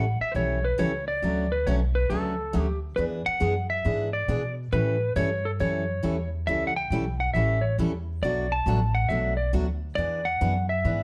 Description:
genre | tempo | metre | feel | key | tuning
country, western swing | 137 BPM | 4/4 | swing 66% on 8ths | unclear | A4 = 440 Hz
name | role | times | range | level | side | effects
clean lap steel guitar | melody | 0.0-11.0 s | A4 to A5 | -30 LUFS | equal | plate reverb
picked steel-string acoustic guitar | accompaniment | 0.0-11.0 s | B2 to A4 | -32 LUFS | equal | none
upright bass | bass | 0.0-11.0 s | A1 to B2 | -30 LUFS | equal | none
room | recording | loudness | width
moderate studio reverb, RT60 0.8 s | none | -26 LUFS | mono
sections
0.0-11.0 A section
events
none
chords
0.0 A7; 1.2 Dmaj7; 3.0 E7; 4.7 A7; 8.2 Bm7; 10.0 E7

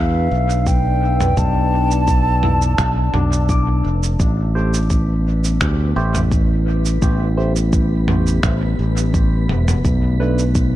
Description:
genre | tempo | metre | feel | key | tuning
ambient dub | 85 BPM | 4/4 | swing 53% on 16ths | unclear | A4 = 440 Hz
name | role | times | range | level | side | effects
mellow hollow silver concert flute | melody | 0.0-3.5 s | F5 to A5 | -22 LUFS | equal | dub echo
deep dark ambient pad | sustained chords | 0.0-10.8 s | A3 to G5 | -28 LUFS | left 2 dB | chorus, built-in reverb
concert harp | arpeggios | 0.0-5.9 s | D4 to E6 | -30 LUFS | left 5 dB | dub echo
modern bright fingered electric bass | bass | 0.0-10.8 s | E1 to E2 | -17 LUFS | equal | none
lo-fi sampler-style drum kit | drums | 0.5-10.7 s | cabasa, finger snaps, toms | -24 LUFS | right 1 dB | overdrive, dub echo
electronic kick drum | drums | 0.7-10.7 s | none | -19 LUFS | equal | none
wind-like tuned noise texture | texture | 4.9-10.8 s | B3 to B6 | -29 LUFS | left 2 dB | built-in reverb
barky tine electric piano | stabs | 4.5-10.4 s | A3 to C5 | -27 LUFS | right 3 dB | overdrive, phaser, dub echo
room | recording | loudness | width
little or no reverb | dark, warm production | -15 LUFS | side -14 dB against mid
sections
0.0-4.2 A section; 4.2-10.8 A section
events
none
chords
0.0 Bm7; 4.2 A7(no3); 9.8 Bm7

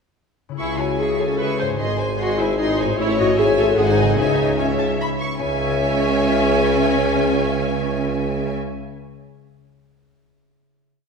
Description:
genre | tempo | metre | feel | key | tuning
cinematic, playful, whimsical film cue | 150 BPM | 3/4 | straight | C# minor | A4 = 440 Hz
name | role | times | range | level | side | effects
concert harp | arpeggios | 0.5-9.3 s | G#2 to E5 | -28 LUFS | left 4 dB | none
marimba with medium hard mallets | melody | 0.6-8.9 s | C#4 to C#5 | -23 LUFS | left 6 dB | none
rich studio violin section | melody | 0.6-8.5 s | C#5 to C#6 | -28 LUFS | left 1 dB | none
rich studio violin section | second line | 0.6-8.6 s | G#4 to F#5 | -25 LUFS | left 2 dB | none
warm studio viola section | accompaniment | 0.6-8.6 s | C#4 to B#4 | -25 LUFS | equal | none
clear tuba | bass | 0.6-8.6 s | G#1 to C#2 | -25 LUFS | right 4 dB | none
warm studio cello section | bass | 0.6-8.6 s | G#2 to C#3 | -27 LUFS | right 2 dB | none
warm studio double bass section | bass | 0.6-8.6 s | G#1 to C#2 | -28 LUFS | right 5 dB | none
room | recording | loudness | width
wet scoring stage reverb, RT60 1.8 s | heard from further back in the room | -17 LUFS | side -5 dB against mid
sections
0.6-5.4 A section; 5.4-7.8 final chord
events
none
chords
0.6 C#m; 1.8 G#; 3.0 A; 3.4 C#m/G#; 3.8 G#7; 4.2 C#m

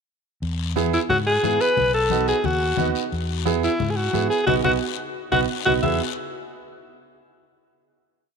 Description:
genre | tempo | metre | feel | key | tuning
latin, cumbia | 177 BPM | 4/4 | straight | E major | A4 = 444 Hz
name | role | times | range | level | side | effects
fingered electric bass | bass | 0.4-6.0 s | B1 to G#2 | -27 LUFS | left 1 dB | none
congas | percussion | 0.4-5.9 s | none | -30 LUFS | left 12 dB | none
guiro | percussion | 0.4-5.9 s | none | -34 LUFS | left 16 dB | none
bright upright piano | accompaniment | 0.8-6.0 s | B3 to G#4 | -26 LUFS | right 10 dB | none
bright alto saxophone | melody | 0.9-6.0 s | E4 to E5 | -22 LUFS | left 1 dB | none
room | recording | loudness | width
moderate echo chamber reverb, RT60 2.8 s | 1960s-style stereo with parts hard left and right | -19 LUFS | side -6 dB against mid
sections
0.4-5.8 groove; 5.8-7.2 final chord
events
band accent 4.5-5.8; drum fill 5.3-5.8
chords
0.4 E; 1.8 B7; 3.1 E; 4.5 B; 5.8 E

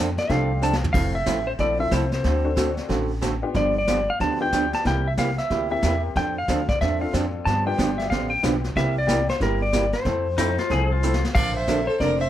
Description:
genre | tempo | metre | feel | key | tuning
country, western swing | 184 BPM | 4/4 | swing 63% on 8ths | F major | A4 = 444 Hz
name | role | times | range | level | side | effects
archtop guitar, miked and amplified | accompaniment | 0.0-12.2 s | C3 to A4 | -27 LUFS | right 4 dB | none
upright bass | bass | 0.0-12.3 s | F1 to G2 | -26 LUFS | equal | none
clean lap steel guitar | melody | 0.2-12.3 s | Bb4 to A5 | -25 LUFS | left 1 dB | none
vintage brush drum kit | drums | 0.2-12.3 s | brushed snare drum, crash cymbal, hi-hat, kick drum, snare drum, toms | -28 LUFS | left 1 dB | none
honky-tonk upright piano | accompaniment | 0.3-11.9 s | A3 to A4 | -31 LUFS | left 5 dB | none
pedal steel guitar | second line | 10.4-11.2 s | Eb4 to Ab4 | -26 LUFS | left 4 dB | none
clear fiddle | second line | 11.3-12.3 s | A4 to D5 | -27 LUFS | right 1 dB | none
room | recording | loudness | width
light reverb | none | -20 LUFS | side -12 dB against mid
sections
0.9-12.3 A section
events
drum fill 0.6-0.9, 11.0-11.4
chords
0.0 F69; 0.9 Fmaj7; 2.2 D7; 3.5 G7; 4.9 C7; 6.2 F6; 7.5 G7; 8.8 C7; 10.1 Fmaj7; 11.4 Bbmaj9

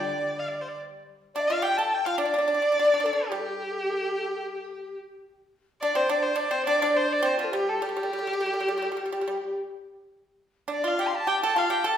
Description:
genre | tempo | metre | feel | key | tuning
chinese traditional, Chinese chamber ensemble | 106 BPM | 4/4 | rubato | D yu mode | A4 = 440 Hz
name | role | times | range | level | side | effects
bright erhu | melody | 0.0-12.0 s | F4 to C6 | -26 LUFS | equal | none
mellow hollow large dizi | second line | 0.0-12.0 s | G4 to A5 | -30 LUFS | left 3 dB | none
pipa | second line | 0.0-12.0 s | F3 to A4 | -31 LUFS | right 3 dB | none
steel-string zither | accompaniment | 0.0-1.0 s | G3 | -46 LUFS | left 2 dB | none
room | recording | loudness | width
wet recital hall reverb, RT60 1.3 s | recorded in a church or concert hall | -24 LUFS | side -9 dB against mid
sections
0.0-1.1 A section; 1.1-12.0 B section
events
none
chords
none

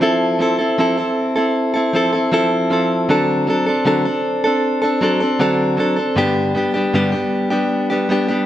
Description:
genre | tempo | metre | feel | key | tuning
pop | 78 BPM | 4/4 | straight | unclear | A4 = 441 Hz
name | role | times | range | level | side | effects
direct-recorded clean electric guitar | solo | 0.0-8.5 s | G2 to A4 | -15 LUFS | equal | none
room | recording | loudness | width
wet large studio reverb, RT60 1.2 s | band playing live in one room | -15 LUFS | side -12 dB against mid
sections
0.0-8.5 A section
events
none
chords
0.0 Fmaj7; 3.1 D7; 6.2 G

